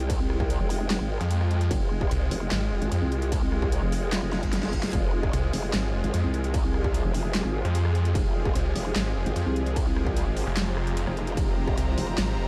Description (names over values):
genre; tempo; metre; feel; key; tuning
heavy wobble dubstep; 149 BPM; 4/4; half-time; F minor; A4 = 442 Hz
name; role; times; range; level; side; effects
growl bass; bass; 0.0-12.2 s; F1 to C2; -30 LUFS; equal; chorus, overdrive
dubstep drum kit; drums; 0.0-12.3 s; handclaps, hi-hat, ride cymbal, rim click, snare drum; -36 LUFS; equal; small room ambience
clear studio string section; texture; 0.0-12.5 s; Ab3 to Bb5; -37 LUFS; equal; sidechain pumping
electronic kick drum; drums; 0.1-11.8 s; none; -30 LUFS; equal; distortion, small room ambience
snarling distorted saw bass; bass; 1.2-12.5 s; F1 to F2; -28 LUFS; equal; distortion, overdrive
reverse cymbal; sound effects; 4.3-4.9 s; none; -43 LUFS; equal; none
supersaw pad; sustained chords; 4.9-12.5 s; F3 to C5; -37 LUFS; equal; sidechain pumping, low-pass filter
room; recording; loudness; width
digital ambience; dark, warm production; -26 LUFS; mono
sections
0.0-12.5 A section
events
drum fill 4.3-4.9; reverse cymbal 4.3-4.9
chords
0.0 Fmadd9